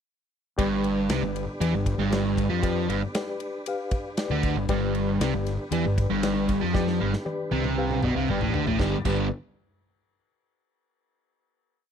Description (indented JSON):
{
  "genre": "classic rock",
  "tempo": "117 BPM",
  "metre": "4/4",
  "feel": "straight",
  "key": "G mixolydian",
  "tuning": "A4 = 444 Hz",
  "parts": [
    { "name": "reed electric piano", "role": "accompaniment", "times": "0.6-9.3 s", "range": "G4 to G5", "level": "-32 LUFS", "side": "left 5 dB", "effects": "fast tremolo" },
    { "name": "tonewheel organ", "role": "sustained chords", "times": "0.6-9.2 s", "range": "D4 to D5", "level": "-38 LUFS", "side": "right 1 dB", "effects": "chorus vibrato, stopped rotary speaker" },
    { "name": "biting overdriven guitar", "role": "riff", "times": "0.6-9.3 s", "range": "G2 to G3", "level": "-28 LUFS", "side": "right 12 dB", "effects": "none" },
    { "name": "sludgy distorted guitar", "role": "riff", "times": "0.6-9.3 s", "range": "G2 to D4", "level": "-28 LUFS", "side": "left 9 dB", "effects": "overdrive" },
    { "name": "fuzz fingered electric bass", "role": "bass", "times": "0.6-9.3 s", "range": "G1 to F2", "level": "-30 LUFS", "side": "equal", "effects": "overdrive" },
    { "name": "big rock drum kit", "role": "drums", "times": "0.6-9.2 s", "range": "crash cymbal, kick drum, ride cymbal, snare drum, toms", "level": "-30 LUFS", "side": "equal", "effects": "none" }
  ],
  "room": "little or no reverb",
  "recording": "dry, close 1970s-style studio recording",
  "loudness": "-23 LUFS",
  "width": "side -8 dB against mid",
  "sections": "0.6-8.8 riff; 8.8-10.8 final chord",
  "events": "drum fill 6.7-8.8; reed electric piano fill 7.8-8.8",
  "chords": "0.6 G"
}